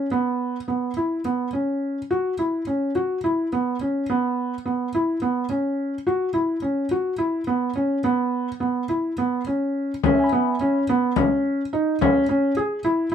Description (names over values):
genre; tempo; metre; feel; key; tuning
contemporary instrumental, chamber music in an uneven meter; 212 BPM (eighths); 7/8; straight; C# minor; A4 = 440 Hz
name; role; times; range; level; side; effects
felt-muted upright piano; arpeggios; 0.0-13.1 s; B3 to G#4; -21 LUFS; right 1 dB; none
frame drum; percussion; 10.0-13.0 s; none; -22 LUFS; left 9 dB; none
tine electric piano; texture; 10.1-10.8 s; E5 to B5; -26 LUFS; left 3 dB; slow stereo tremolo
room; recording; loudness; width
moderate studio reverb, RT60 0.6 s; none; -21 LUFS; side -8 dB against mid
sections
0.0-10.0 A section; 10.0-13.1 B section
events
none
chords
0.0 C#m7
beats
| 0.12 0.40 0.69 0.97 1.26 1.54 1.83 | 2.11 2.40 2.68 2.97 3.25 3.54 3.82 | 4.10 4.38 4.66 4.94 5.22 5.50 5.79 | 6.07 6.35 6.63 6.91 7.19 7.47 7.75 | 8.04 8.32 8.61 8.89 9.18 9.47 9.75 | 10.04 10.32 10.60 10.89 11.17 11.45 11.73 | 12.02 12.30 12.58 12.86 13.13